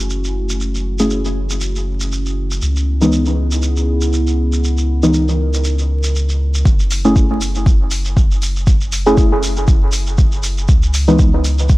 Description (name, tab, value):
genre	dub techno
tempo	119 BPM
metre	4/4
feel	swing 56% on 16ths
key	F# minor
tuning	A4 = 440 Hz
part	dark analog pad	sustained chords	0.0-6.6 s	A3 to A#4	-24 LUFS	right 1 dB	chorus, phaser, sidechain pumping
part	soft dub sub bass	bass	0.0-11.8 s	F#1 to C#2	-18 LUFS	equal	transformer saturation, sidechain pumping
part	shekere	percussion	0.1-11.8 s	none	-26 LUFS	right 2 dB	none
part	deep mellow chord stab	stabs	1.0-11.3 s	E3 to G#4	-17 LUFS	equal	chorus, phaser, cassette tape, dub echo
part	electronic kick drum	drums	6.7-11.8 s	none	-12 LUFS	equal	overdrive
part	electronic hi-hat	drums	6.9-11.6 s	none	-28 LUFS	left 3 dB	overdrive, low-pass filter on hats, low-pass filter on room
room	digital ambience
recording	dry, gritty hardware recording, vinyl crackle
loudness	-13 LUFS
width	side -19 dB against mid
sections	0.0-6.7 A section; 6.7-11.8 B section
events	filter sweep on synth stab 0.0-6.7; filter sweep on analog synth pad 0.0-6.7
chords	0.0 F#m7; 2.6 C#m7; 6.7 F#m7; 10.7 C#m7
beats	0.10 | 0.60 1.11 1.61 2.12 | 2.62 3.12 3.63 4.13 | 4.64 5.14 5.65 6.15 | 6.65 7.16 7.66 8.17 | 8.67 9.18 9.68 10.18 | 10.69 11.19 11.70